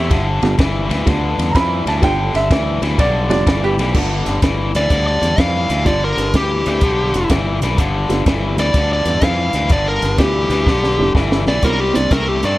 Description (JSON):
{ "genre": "electric blues shuffle", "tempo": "125 BPM", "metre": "4/4", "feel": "swing 66% on 8ths", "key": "G mixolydian", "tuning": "A4 = 440 Hz", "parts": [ { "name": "bright upright piano", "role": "second line", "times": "0.0-3.9 s", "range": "E4 to B5", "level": "-21 LUFS", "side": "right 2 dB", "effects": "none" }, { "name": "biting overdriven guitar", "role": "riff", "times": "0.0-12.6 s", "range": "G2 to A3", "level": "-20 LUFS", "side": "left 3 dB", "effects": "none" }, { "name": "fingered electric bass", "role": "bass", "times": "0.0-12.6 s", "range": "F1 to G2", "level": "-20 LUFS", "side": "equal", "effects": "none" }, { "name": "compact cocktail drum kit", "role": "drums", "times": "0.1-12.5 s", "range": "crash cymbal, hi-hat, kick drum, ride cymbal, snare drum", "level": "-18 LUFS", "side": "equal", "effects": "none" }, { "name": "honky-tonk upright piano", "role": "accompaniment", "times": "0.4-12.4 s", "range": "F3 to F4", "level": "-23 LUFS", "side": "right 3 dB", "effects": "none" }, { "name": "smooth overdriven lead guitar", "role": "melody", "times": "4.8-12.6 s", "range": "G4 to F5", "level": "-19 LUFS", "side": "equal", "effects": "none" } ], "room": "light reverb, small room ambience", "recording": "none", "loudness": "-14 LUFS", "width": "side -17 dB against mid", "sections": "0.0-3.9 A section; 3.9-12.6 B section", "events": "upright piano solo 0.0-3.9; drum fill 10.7-11.6", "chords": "0.1 G9; 11.6 C9" }